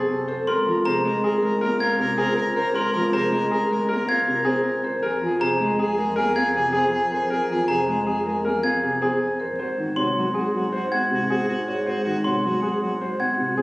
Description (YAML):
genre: classical, minimalist pattern music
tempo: 158 BPM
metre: 6/4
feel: straight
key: Db major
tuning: A4 = 440 Hz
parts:
  - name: warm grand piano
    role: melody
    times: 0.0-13.6 s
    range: Ab4 to Gb5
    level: -28 LUFS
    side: left 1 dB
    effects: none
  - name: clear soprano saxophone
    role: second line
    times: 0.0-13.6 s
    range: Gb4 to Bb4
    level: -27 LUFS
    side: equal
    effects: none
  - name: dark grand piano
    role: accompaniment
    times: 0.0-13.6 s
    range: C3 to C4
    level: -27 LUFS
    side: equal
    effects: none
  - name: marimba with soft mallets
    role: arpeggios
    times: 0.0-13.6 s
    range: C4 to C5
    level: -29 LUFS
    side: right 1 dB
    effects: none
  - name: rich symphonic double bass section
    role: bass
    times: 0.0-13.6 s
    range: Db2 to Ab2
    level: -31 LUFS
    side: equal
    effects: none
  - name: glockenspiel with soft plastic mallets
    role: arpeggios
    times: 0.5-13.4 s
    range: Bb5 to Ab6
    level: -26 LUFS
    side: equal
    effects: none
room: moderate recital hall reverb, RT60 1.6 s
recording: recorded on a phone in the room, studio reverb, compression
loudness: -20 LUFS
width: side -21 dB against mid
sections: 0.0-13.6 A section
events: none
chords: 0.5 Db5; 5.0 Fm; 9.6 Ab7(no3)